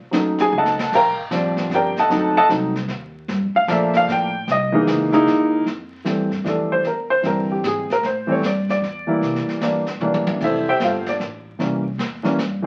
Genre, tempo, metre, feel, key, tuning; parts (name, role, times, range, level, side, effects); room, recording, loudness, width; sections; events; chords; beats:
jazz piano trio; 152 BPM; 3/4; swing 64% on 8ths; F major; A4 = 439 Hz
warm baby grand piano; melody; 0.1-12.7 s; D3 to Bb5; -20 LUFS; equal
upright bass; bass; 0.1-12.7 s; E1 to Bb2; -31 LUFS; equal
jazz brush drum kit; drums; 0.1-12.7 s; brushed snare drum, crash cymbal, hi-hat, kick drum, snare drum, toms; -32 LUFS; equal
wet studio ambience, RT60 0.5 s; very old 78 rpm record, vinyl crackle; -20 LUFS; mono
0.0-5.7 A section; 5.7-12.7 B section
grand piano solo 0.0-5.7; drum fill 0.5-0.9, 10.0-10.4
0.0 B9 (rootless); 0.9 Bb6; 2.1 D7b9; 3.3 Gm9; 4.5 C7alt; 5.7 Fmaj9; 6.8 E7alt; 8.0 Am7; 9.2 C9; 10.4 Fmaj9; 11.6 C7b9
0.13 0.52 | 0.92 1.31 1.71 | 2.10 2.50 2.89 | 3.29 3.68 4.08 | 4.47 4.87 5.26 | 5.66 6.05 6.45 | 6.84 7.24 7.63 | 8.03 8.43 8.82 | 9.22 9.61 10.01 | 10.41 10.80 11.20 | 11.59 11.99 12.39